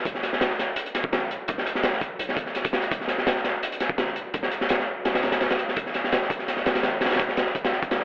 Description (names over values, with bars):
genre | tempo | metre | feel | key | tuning
drum and bass, jungle | 168 BPM | 4/4 | straight | unclear | A4 = 440 Hz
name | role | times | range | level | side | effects
long sustained 808-style bass | bass | 0.1-8.0 s | E1 to C2 | -39 LUFS | equal | none
crunchy breakbeat drum kit | drums | 0.1-8.0 s | hi-hat, kick drum, snare drum | -23 LUFS | equal | none
room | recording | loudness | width
little or no reverb | telephone sound | -22 LUFS | side -34 dB against mid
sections
0.0-8.0 A section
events
none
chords
none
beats
| 0.05 0.41 0.77 1.12 | 1.48 1.84 2.20 2.55 | 2.91 3.27 3.62 3.98 | 4.34 4.70 5.05 5.41 | 5.77 6.12 6.48 6.84 | 7.20 7.55 7.91